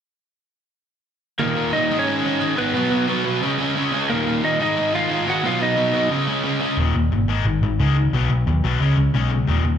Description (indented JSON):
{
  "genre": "punk",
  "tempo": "178 BPM",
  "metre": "4/4",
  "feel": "straight",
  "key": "Eb minor",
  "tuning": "A4 = 440 Hz",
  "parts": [
    { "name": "lightly driven lead guitar", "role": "melody", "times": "1.4-6.1 s", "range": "Bb3 to Gb5", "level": "-22 LUFS", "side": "right 1 dB", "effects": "slapback echo" },
    { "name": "distorted electric guitar", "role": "riff", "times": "1.4-9.8 s", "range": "Eb2 to Db4", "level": "-23 LUFS", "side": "left 9 dB", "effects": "distortion, slapback echo" },
    { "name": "overdriven semi-hollow guitar", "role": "riff", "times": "1.4-6.8 s", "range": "Eb2 to Db4", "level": "-23 LUFS", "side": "right 9 dB", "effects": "slapback echo" },
    { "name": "hollow-body short-scale picked electric bass", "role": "bass", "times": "6.8-9.8 s", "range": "Eb1 to D#2", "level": "-18 LUFS", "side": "equal", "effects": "none" }
  ],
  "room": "little or no reverb",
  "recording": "live gig heard through the venue's PA, club reverb",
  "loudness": "-18 LUFS",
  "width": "side -8 dB against mid",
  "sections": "1.4-6.8 A section; 6.8-9.8 B section",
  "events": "none",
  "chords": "1.4 Eb5; 1.9 Abm; 2.7 B5; 3.4 Db5; 4.1 Eb5; 4.6 Ab5; 5.4 B; 6.1 Db5; 6.8 Eb5; 7.3 Ab5; 8.1 B; 8.8 Db5"
}